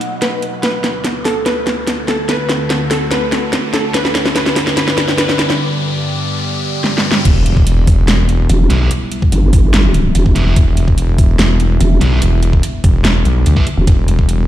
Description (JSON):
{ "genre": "heavy wobble dubstep", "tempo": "145 BPM", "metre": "4/4", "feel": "half-time", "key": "E minor", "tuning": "A4 = 439 Hz", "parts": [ { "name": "wide unison pluck", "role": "melody", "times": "0.0-5.6 s", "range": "A4 to D#5", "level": "-20 LUFS", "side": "right 1 dB", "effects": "tape echo" }, { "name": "evolving wavetable pad", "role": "sustained chords", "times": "0.0-14.5 s", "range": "D2 to F#5", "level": "-22 LUFS", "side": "left 1 dB", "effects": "chorus, built-in reverb, sidechain pumping" }, { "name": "dubstep drum kit", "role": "drums", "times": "0.0-14.4 s", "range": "crash cymbal, hi-hat, snare drum", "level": "-17 LUFS", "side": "equal", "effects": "studio reverb" }, { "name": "riser and impact", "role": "sound effects", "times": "0.0-8.9 s", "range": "none", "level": "-24 LUFS", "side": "left 1 dB", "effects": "none" }, { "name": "wobble bass", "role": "bass", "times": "7.3-14.5 s", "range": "E1 to D2", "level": "-12 LUFS", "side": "equal", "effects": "chorus, overdrive" }, { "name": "electronic kick drum", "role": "drums", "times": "7.3-14.3 s", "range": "none", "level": "-12 LUFS", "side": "equal", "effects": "studio reverb" }, { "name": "vowel-sweep wobble bass", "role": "bass", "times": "8.5-13.9 s", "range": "E1 to G1", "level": "-11 LUFS", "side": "equal", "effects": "chorus, overdrive" }, { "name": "sludgy distorted guitar", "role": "stabs", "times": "8.7-13.6 s", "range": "E4 to B4", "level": "-24 LUFS", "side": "right 2 dB", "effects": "overdrive, tape echo" } ], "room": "light reverb", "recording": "played on a big sound system in a bare room, large studio reverb", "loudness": "-11 LUFS", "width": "side -13 dB against mid", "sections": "0.0-7.3 A section; 7.3-14.5 B section", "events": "build-up 0.0-7.3; drum fill 0.0-5.6, 6.8-7.3; riser 0.0-7.3; break 5.6-7.3; drop 7.3-14.5; impact 7.3-8.9", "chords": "0.0 B; 0.6 D; 3.9 G; 7.3 Em", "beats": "0.22 | 0.63 1.05 1.46 1.87 | 2.29 2.70 3.12 3.53 | 3.94 4.36 4.77 5.18 | 5.60 6.01 6.43 6.84 | 7.25 7.67 8.08 8.49 | 8.91 9.32 9.74 10.15 | 10.56 10.98 11.39 11.80 | 12.22 12.63 13.05 13.46 | 13.87 14.29" }